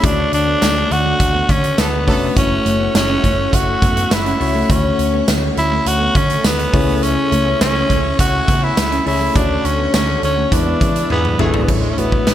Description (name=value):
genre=1980s-style pop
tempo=103 BPM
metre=4/4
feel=straight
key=unclear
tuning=A4 = 440 Hz
part: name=growling tenor saxophone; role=melody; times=0.0-12.3 s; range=G#3 to F#4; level=-18 LUFS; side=equal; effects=digital delay
part: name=soft electric-piano-like synth keys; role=accompaniment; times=0.0-12.3 s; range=A2 to C#5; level=-22 LUFS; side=left 3 dB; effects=chorus
part: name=string machine, violins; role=sustained chords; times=0.0-12.3 s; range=A3 to C#6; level=-26 LUFS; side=left 1 dB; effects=ensemble chorus
part: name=clean electric guitar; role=riff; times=0.0-12.2 s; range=F#3 to D4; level=-27 LUFS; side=right 2 dB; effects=none
part: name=vintage muted picked electric bass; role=bass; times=0.0-12.3 s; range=F1 to E3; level=-21 LUFS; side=equal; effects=none
part: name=huge arena drum kit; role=drums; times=0.0-12.3 s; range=crash cymbal, hi-hat, kick drum, snare drum, tambourine, toms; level=-18 LUFS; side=equal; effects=none
part: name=warm horn section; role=stabs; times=1.8-2.3, 11.1-11.6 s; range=E3 to A4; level=-29 LUFS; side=right 2 dB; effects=digital delay
room=moderate plate reverb, RT60 1.9 s, small room ambience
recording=bright 1980s-style digital production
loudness=-13 LUFS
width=side -11 dB against mid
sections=0.0-11.7 A section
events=band accent 0.0-2.4, 9.4-11.7; drum fill 11.1-11.7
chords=0.0 Dmaj7; 2.4 F#m7; 4.7 Dmaj7; 6.7 Amaj7/C#; 9.4 Dmaj7; 10.5 E7; 11.7 Bm11